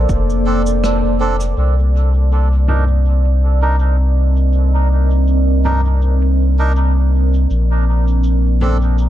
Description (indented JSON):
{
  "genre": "ambient dub",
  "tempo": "81 BPM",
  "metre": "4/4",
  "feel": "swing 54% on 16ths",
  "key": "C dorian",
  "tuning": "A4 = 440 Hz",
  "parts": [
    { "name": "deep dark ambient pad", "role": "sustained chords", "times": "0.0-9.1 s", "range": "Bb3 to Eb5", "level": "-21 LUFS", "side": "right 2 dB", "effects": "chorus, built-in reverb" },
    { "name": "warm sub bass", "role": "bass", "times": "0.0-9.1 s", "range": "F1 to C2", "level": "-13 LUFS", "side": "equal", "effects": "none" },
    { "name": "vintage brush drum kit", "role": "drums", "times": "0.1-9.1 s", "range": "cabasa, rim click, toms", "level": "-27 LUFS", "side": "left 1 dB", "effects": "low-pass filter on toms, low-pass filter on snare, low-pass filter on perc, low-pass filter on room, dub echo" },
    { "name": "melodica", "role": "stabs", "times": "0.5-8.8 s", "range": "C4 to Bb4", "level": "-24 LUFS", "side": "right 3 dB", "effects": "vintage 12-bit sampler grit, low-pass filter, dub echo" }
  ],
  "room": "little or no reverb",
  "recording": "dark, warm production",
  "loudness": "-12 LUFS",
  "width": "side -13 dB against mid",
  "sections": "0.0-1.6 A section; 1.6-9.1 B section",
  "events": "band accent 0.8-1.2",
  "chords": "0.0 Bbmaj9; 1.6 Cm9; 7.5 Bbmaj9",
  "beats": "0.10 0.84 | 1.58 2.32 3.06 3.80 | 4.54 5.28 6.02 6.76 | 7.50 8.24 8.98"
}